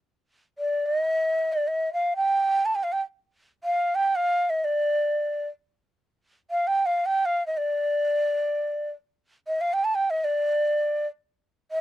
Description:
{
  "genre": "Persian modal ensemble",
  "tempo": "free time",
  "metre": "none",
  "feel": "none",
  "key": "D dastgah shur",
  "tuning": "A4 = 439 Hz",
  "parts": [
    { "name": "breathy reedy ney", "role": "solo", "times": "0.6-11.8 s", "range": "D5 to A5", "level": "-22 LUFS", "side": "equal", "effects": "none" }
  ],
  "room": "little or no reverb",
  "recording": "dry, close 1970s-style studio recording",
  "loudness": "-23 LUFS",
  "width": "side -14 dB against mid",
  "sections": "0.2-11.3 A section",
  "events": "none",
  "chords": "none"
}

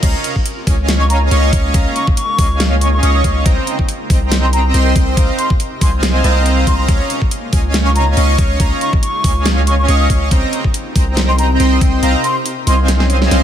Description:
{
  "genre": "future bass",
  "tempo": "140 BPM",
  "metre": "4/4",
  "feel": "swing 55% on 16ths, half-time",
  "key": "Db lydian",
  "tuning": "A4 = 440 Hz",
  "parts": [
    { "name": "shimmering ambient pad", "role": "sustained chords", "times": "0.0-13.4 s", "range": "C3 to Bb4", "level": "-25 LUFS", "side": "left 1 dB", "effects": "chorus, built-in reverb, sidechain pumping" },
    { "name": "soft supersaw", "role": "riff", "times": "0.0-13.4 s", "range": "C4 to Db6", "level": "-18 LUFS", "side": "right 1 dB", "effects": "sidechain pumping, ping-pong delay" },
    { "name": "long sustained 808-style bass", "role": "bass", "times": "0.0-13.4 s", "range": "C2 to Db2", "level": "-14 LUFS", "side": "equal", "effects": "sidechain pumping" },
    { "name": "dubstep drum kit", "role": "drums", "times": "0.0-13.4 s", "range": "crash cymbal, hi-hat, snare drum", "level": "-20 LUFS", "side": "equal", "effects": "small room ambience" },
    { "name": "electronic kick drum", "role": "drums", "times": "0.0-11.9 s", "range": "none", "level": "-14 LUFS", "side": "equal", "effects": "small room ambience" },
    { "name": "wooden flute", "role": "melody", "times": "1.0-12.8 s", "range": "Bb5 to Eb6", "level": "-21 LUFS", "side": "left 1 dB", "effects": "sidechain pumping, ping-pong delay" },
    { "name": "swell", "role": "sound effects", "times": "13.0-13.4 s", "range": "none", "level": "-19 LUFS", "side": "right 2 dB", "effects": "none" }
  ],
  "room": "little or no reverb",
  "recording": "high-pass filter",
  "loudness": "-12 LUFS",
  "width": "side -10 dB against mid",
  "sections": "0.0-13.4 A section",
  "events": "drop 0.0-13.4; kick drops out 12.0-13.4; drum fill 12.9-13.4; swell 13.0-13.4",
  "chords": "0.0 Db69; 3.5 Cm7; 5.2 Ab69/C; 6.9 Db69; 10.3 Cm7; 12.0 Ab69/C"
}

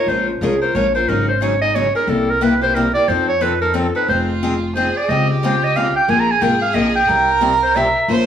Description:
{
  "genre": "acoustic string swing (jazz manouche)",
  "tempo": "180 BPM",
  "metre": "3/4",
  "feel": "swing 60% on 8ths",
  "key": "F minor from 4.1 s",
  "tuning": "A4 = 439 Hz",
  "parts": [
    { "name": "clear clarinet", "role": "melody", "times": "0.0-8.1 s", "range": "F4 to Bb5", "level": "-17 LUFS", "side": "right 1 dB", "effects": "plate reverb" },
    { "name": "picked steel-string acoustic guitar", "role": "accompaniment", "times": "0.0-8.3 s", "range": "C3 to Bb4", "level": "-20 LUFS", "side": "left 3 dB", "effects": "none" },
    { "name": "upright bass", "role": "bass", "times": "0.1-8.3 s", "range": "F1 to F2", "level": "-23 LUFS", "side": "equal", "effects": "none" },
    { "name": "warm violin", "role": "second line", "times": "4.1-8.3 s", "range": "F4 to C5", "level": "-21 LUFS", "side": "right 5 dB", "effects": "none" }
  ],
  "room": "moderate studio reverb, RT60 0.6 s",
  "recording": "studio reverb",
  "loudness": "-14 LUFS",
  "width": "side -9 dB against mid",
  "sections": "0.0-4.1 A section; 4.1-8.3 A section",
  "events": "clarinet solo 0.0-8.3",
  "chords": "0.1 Bbm9; 1.1 Ab7sus4; 2.1 C7; 3.1 F7; 4.1 Fm7; 5.1 Dbmaj7; 6.1 Bbsus2; 7.1 C"
}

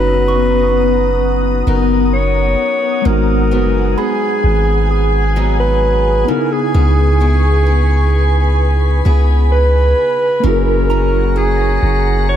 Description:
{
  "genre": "R&B",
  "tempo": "65 BPM",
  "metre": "4/4",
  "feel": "straight",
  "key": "unclear",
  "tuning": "A4 = 440 Hz",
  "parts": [
    { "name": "breathy alto saxophone", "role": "melody", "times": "0.0-12.4 s", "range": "G#4 to C#5", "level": "-17 LUFS", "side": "right 1 dB", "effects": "tape echo" },
    { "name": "mellow tine electric piano", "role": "accompaniment", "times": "0.0-12.4 s", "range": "G#3 to G#4", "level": "-21 LUFS", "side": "equal", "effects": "medium stereo tremolo, tape echo" },
    { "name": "glassy FM pad", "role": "sustained chords", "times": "0.0-12.4 s", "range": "B3 to D#6", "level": "-21 LUFS", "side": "left 3 dB", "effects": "ensemble chorus, built-in reverb" },
    { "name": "picked acoustic archtop guitar", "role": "arpeggios", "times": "0.0-12.4 s", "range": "G#2 to A#4", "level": "-23 LUFS", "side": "left 2 dB", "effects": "tape echo" },
    { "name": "long sustained 808-style bass", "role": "bass", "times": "0.0-12.4 s", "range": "F#1 to C#2", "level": "-14 LUFS", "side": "equal", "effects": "none" },
    { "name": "soft synth bell", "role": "texture", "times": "0.3-12.4 s", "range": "A#5 to C#6", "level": "-30 LUFS", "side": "right 6 dB", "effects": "chorus, phaser, tape echo" }
  ],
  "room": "light reverb, small room ambience",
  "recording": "echo-heavy mix",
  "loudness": "-11 LUFS",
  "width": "side -10 dB against mid",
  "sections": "0.0-12.4 A section",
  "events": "none",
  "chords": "0.0 Bmaj7/F#; 3.1 G#m7; 6.3 C#m7; 10.4 F#7"
}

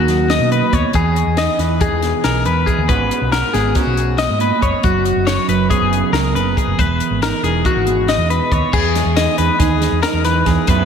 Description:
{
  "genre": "math rock and midwest emo",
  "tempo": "278 BPM (eighths)",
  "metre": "9/8",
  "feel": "straight",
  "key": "E lydian",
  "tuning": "A4 = 440 Hz",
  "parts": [
    { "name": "electric guitar through a small old amp", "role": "accompaniment", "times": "0.0-10.8 s", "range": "E2 to F#4", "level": "-20 LUFS", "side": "right 10 dB", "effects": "none" },
    { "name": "twelve-string electric guitar", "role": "arpeggios", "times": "0.0-10.8 s", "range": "F#4 to D#5", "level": "-17 LUFS", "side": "left 5 dB", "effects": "spring reverb, diffuse ambient delay" },
    { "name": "hollow-body short-scale fingered electric bass", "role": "bass", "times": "0.0-10.8 s", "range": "E1 to B2", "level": "-19 LUFS", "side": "equal", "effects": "none" },
    { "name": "compact cocktail drum kit", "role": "drums", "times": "0.1-10.8 s", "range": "crash cymbal, hi-hat, kick drum, snare drum", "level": "-21 LUFS", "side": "equal", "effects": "none" }
  ],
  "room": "moderate lush hall reverb, RT60 1.8 s, studio reverb",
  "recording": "dreamy mix soaked in reverb",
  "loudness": "-13 LUFS",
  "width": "side -7 dB against mid",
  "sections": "0.0-8.7 A section; 8.7-10.8 B section",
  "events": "none",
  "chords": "0.0 Bmaj9; 0.9 Emaj7; 2.9 G#m11; 4.8 F#sus4; 6.8 Emaj9; 8.7 Emaj7"
}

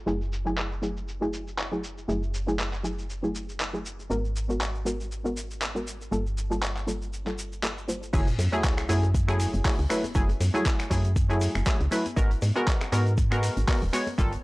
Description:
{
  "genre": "deep house",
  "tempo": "119 BPM",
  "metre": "4/4",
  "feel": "swing 56% on 16ths",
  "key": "unclear",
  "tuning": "A4 = 440 Hz",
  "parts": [
    { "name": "woody FM bass", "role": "bass", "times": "0.0-14.4 s", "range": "D#1 to G#2", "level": "-28 LUFS", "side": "equal", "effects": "none" },
    { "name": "filtered dub chord stab", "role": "stabs", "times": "0.1-14.3 s", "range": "F#3 to C#5", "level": "-30 LUFS", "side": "equal", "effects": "chorus, sidechain pumping, analog delay" },
    { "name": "dusty soul sampler-style drum kit", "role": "drums", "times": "0.1-14.4 s", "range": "cabasa, crash cymbal, finger snaps, handclaps, hi-hat", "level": "-33 LUFS", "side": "equal", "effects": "overdrive" },
    { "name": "electronic kick drum", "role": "drums", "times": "8.1-14.3 s", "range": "none", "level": "-26 LUFS", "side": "equal", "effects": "none" },
    { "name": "vintage drum kit", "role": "drums", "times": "8.1-14.4 s", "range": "hi-hat, shaker, snare drum", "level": "-45 LUFS", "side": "left 2 dB", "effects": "none" },
    { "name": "bongos and congas", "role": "percussion", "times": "8.1-14.2 s", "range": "none", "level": "-42 LUFS", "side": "left 3 dB", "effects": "none" },
    { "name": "sub drop", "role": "sound effects", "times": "8.2-10.2 s", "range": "none", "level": "-36 LUFS", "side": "equal", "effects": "none" }
  ],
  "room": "small room ambience",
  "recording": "dry, gritty hardware recording, transformer saturation, cassette tape, low-pass filter",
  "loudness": "-24 LUFS",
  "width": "side -22 dB against mid",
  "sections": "0.0-8.1 A section; 8.1-14.4 B section",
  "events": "drop 8.1-14.4; impact 8.1-10.2",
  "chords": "0.1 F#m9; 4.1 G#m9; 6.1 Gm9; 8.1 F#m9; 12.2 G#m9"
}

